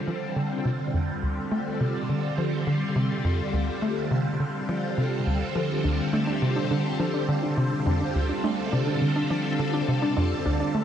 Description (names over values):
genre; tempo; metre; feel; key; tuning
ambient, sequencer-driven space music; 104 BPM; 4/4; straight; D minor; A4 = 442 Hz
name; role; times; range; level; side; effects
phased string machine; sustained chords; 0.0-10.8 s; D3 to A4; -27 LUFS; equal; ensemble chorus, phaser, shimmer reverb
tight sequencer bass; riff; 0.0-10.8 s; D2 to A3; -27 LUFS; equal; wide subtle chorus, cassette tape, analog delay
warbly dusty pluck; arpeggios; 5.8-10.7 s; D4; -30 LUFS; moving between left 2 dB and right 4 dB; chorus, auto-pan, analog delay, shimmer reverb
room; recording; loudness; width
moderate plate reverb, RT60 2.9 s; none; -23 LUFS; side -9 dB against mid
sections
0.0-10.8 A section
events
none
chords
0.0 Dm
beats
0.07 0.65 | 1.23 1.80 2.38 2.96 | 3.53 4.11 4.69 5.26 | 5.84 6.42 7.00 7.57 | 8.15 8.73 9.30 9.88 | 10.46